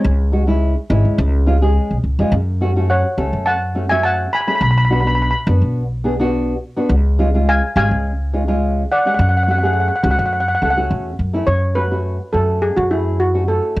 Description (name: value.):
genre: calypso.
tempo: 105 BPM.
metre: 4/4.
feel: straight.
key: F# minor.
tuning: A4 = 437 Hz.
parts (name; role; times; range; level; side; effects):
steel pan; melody; 0.0-13.8 s; E4 to B5; -18 LUFS; equal; cassette tape.
nylon-string guitar; accompaniment; 0.0-13.8 s; G#3 to A4; -21 LUFS; equal; cassette tape.
upright bass; bass; 0.0-13.8 s; G#1 to F#2; -17 LUFS; equal; none.
room: light reverb.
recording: home recording on cassette.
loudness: -14 LUFS.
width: side -18 dB against mid.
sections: 0.0-11.5 A section; 11.5-13.8 B section.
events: steel pan solo 11.5-13.8.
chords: 0.0 C#5; 1.2 C#; 2.3 F#m; 4.6 Bm; 6.9 C#; 9.2 F#m.